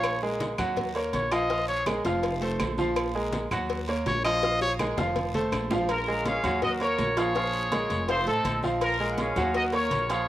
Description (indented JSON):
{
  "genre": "latin, salsa",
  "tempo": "164 BPM",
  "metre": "4/4",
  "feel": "straight",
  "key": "Bb minor",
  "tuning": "A4 = 440 Hz",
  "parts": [
    { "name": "bright trumpet", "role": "melody", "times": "0.0-1.9, 4.1-4.7 s", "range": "Db5 to Eb5", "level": "-28 LUFS", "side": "left 1 dB", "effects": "cassette tape" },
    { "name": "bright grand piano", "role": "accompaniment", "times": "0.0-10.2 s", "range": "F3 to Gb5", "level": "-28 LUFS", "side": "right 1 dB", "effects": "cassette tape" },
    { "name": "upright bass", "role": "bass", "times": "0.0-10.3 s", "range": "F1 to Eb2", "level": "-34 LUFS", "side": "equal", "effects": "none" },
    { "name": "agogo bells and timbales", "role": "percussion", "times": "0.0-10.3 s", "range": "none", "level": "-36 LUFS", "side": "right 5 dB", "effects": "none" },
    { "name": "claves", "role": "percussion", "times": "0.0-5.7 s", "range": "none", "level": "-39 LUFS", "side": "left 2 dB", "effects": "none" },
    { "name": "congas", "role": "percussion", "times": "0.0-10.3 s", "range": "none", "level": "-36 LUFS", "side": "left 2 dB", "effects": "none" },
    { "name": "cowbell and bongos", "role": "percussion", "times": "0.0-10.3 s", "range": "none", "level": "-36 LUFS", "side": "left 6 dB", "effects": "none" },
    { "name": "guiro", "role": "percussion", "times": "0.0-10.3 s", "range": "none", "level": "-45 LUFS", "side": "left 4 dB", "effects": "none" },
    { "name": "clear trumpet section", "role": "melody", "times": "5.9-10.3 s", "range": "C4 to Gb5", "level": "-28 LUFS", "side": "left 1 dB", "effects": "cassette tape" }
  ],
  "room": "light reverb, small room ambience",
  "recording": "home recording on cassette",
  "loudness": "-24 LUFS",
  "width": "side -13 dB against mid",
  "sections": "0.0-5.9 A section; 5.9-10.3 B section",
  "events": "trumpet solo 0.0-5.9; drum fill 4.4-5.9",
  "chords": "0.0 Bb5; 0.8 Ebm7; 1.5 Bb5; 2.2 F; 3.0 Bb5; 3.7 Ebm7; 4.4 Bb5; 5.2 F; 5.9 Bbm7; 8.1 F7; 8.8 Bbm7"
}